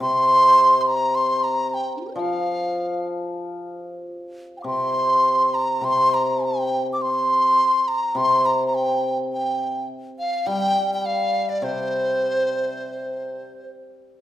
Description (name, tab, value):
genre	chinese traditional, Chinese chamber ensemble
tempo	103 BPM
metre	4/4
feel	straight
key	C shang mode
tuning	A4 = 440 Hz
part	mellow hollow large dizi	melody	0.0-13.7 s	D4 to D6	-19 LUFS	equal	none
part	hammered dulcimer	accompaniment	0.0-13.4 s	C3 to G3	-26 LUFS	left 1 dB	none
room	wet recital hall reverb, RT60 1.4 s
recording	none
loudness	-18 LUFS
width	side -13 dB against mid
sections	0.0-14.0 A section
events	none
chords	none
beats	| 0.03 0.60 1.17 1.75 | 2.32 2.90 3.49 4.07 | 4.66 5.25 5.84 6.43 | 7.01 7.59 8.18 8.76 | 9.34 9.91 10.49 11.06 | 11.64 12.22 12.81 13.41